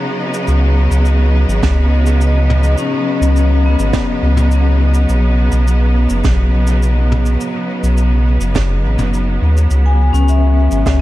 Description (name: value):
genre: ambient dub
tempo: 104 BPM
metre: 4/4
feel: straight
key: unclear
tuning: A4 = 435 Hz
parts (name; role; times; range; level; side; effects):
- bright studio string section; sustained chords; 0.0-11.0 s; C#3 to D#4; -19 LUFS; right 1 dB; none
- vintage brush drum kit; drums; 0.3-11.0 s; cabasa, snare drum, toms; -24 LUFS; right 3 dB; dub echo
- warm sub bass; bass; 0.5-11.0 s; F#1 to D#2; -12 LUFS; equal; none
- electronic kick drum; drums; 1.6-11.0 s; none; -19 LUFS; equal; none
- vibraphone with hard mallets; arpeggios; 2.3-6.2, 9.9-11.0 s; B3 to G#5; -20 LUFS; left 5 dB; dub echo
room: studio reverb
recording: none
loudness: -11 LUFS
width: side -16 dB against mid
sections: 0.5-11.0 A section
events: break 0.0-0.5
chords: 0.5 C#5; 5.1 B; 9.7 C#m7